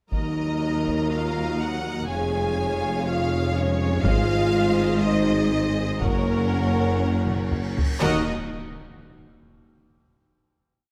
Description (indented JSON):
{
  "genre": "cinematic, epic orchestral film score",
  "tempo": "122 BPM",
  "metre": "4/4",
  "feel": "straight",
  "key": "Eb dorian",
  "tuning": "A4 = 439 Hz",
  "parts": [
    { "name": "rich symphonic violin section", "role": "melody", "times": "0.1-8.3 s", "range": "Bb4 to Ab5", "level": "-33 LUFS", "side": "equal", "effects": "none" },
    { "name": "rich studio violin section", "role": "second line", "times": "0.1-8.3 s", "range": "C5 to Bb5", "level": "-35 LUFS", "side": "equal", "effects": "none" },
    { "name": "warm symphonic viola section", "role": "accompaniment", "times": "0.1-8.3 s", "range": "Gb3 to Bb4", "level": "-34 LUFS", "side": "equal", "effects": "none" },
    { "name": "dark French horn section", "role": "sustained chords", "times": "0.1-8.2 s", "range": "Bb3 to Ab4", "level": "-30 LUFS", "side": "equal", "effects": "none" },
    { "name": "bright symphonic cello section", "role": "bass", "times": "0.1-8.3 s", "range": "Eb2 to Ab2", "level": "-32 LUFS", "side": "equal", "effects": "none" },
    { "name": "mellow tuba", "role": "bass", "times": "0.1-8.2 s", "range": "F1 to Eb2", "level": "-31 LUFS", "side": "equal", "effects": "none" },
    { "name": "rich symphonic double bass section", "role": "bass", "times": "0.1-8.3 s", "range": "F1 to Eb2", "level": "-33 LUFS", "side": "equal", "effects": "none" },
    { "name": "taiko ensemble", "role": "drums", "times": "0.1-8.0 s", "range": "none", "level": "-28 LUFS", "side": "equal", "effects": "none" },
    { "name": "timpani", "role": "percussion", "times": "0.1-0.8, 8.0-8.2 s", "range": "Eb3", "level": "-38 LUFS", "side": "equal", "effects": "none" },
    { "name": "cymbal swell and impact", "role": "sound effects", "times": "7.2-10.0 s", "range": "none", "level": "-40 LUFS", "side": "equal", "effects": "none" }
  ],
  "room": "moderate scoring stage reverb, RT60 1.8 s",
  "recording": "none",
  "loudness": "-23 LUFS",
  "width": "mono",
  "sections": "0.1-8.0 theme; 8.0-10.0 final chord",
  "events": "cymbal swell 7.2-8.0; drum fill 7.3-8.0; impact 8.0-10.0",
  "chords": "0.1 Ebm; 2.1 Db/F; 4.0 Ab; 6.0 Gb; 8.0 Ebm"
}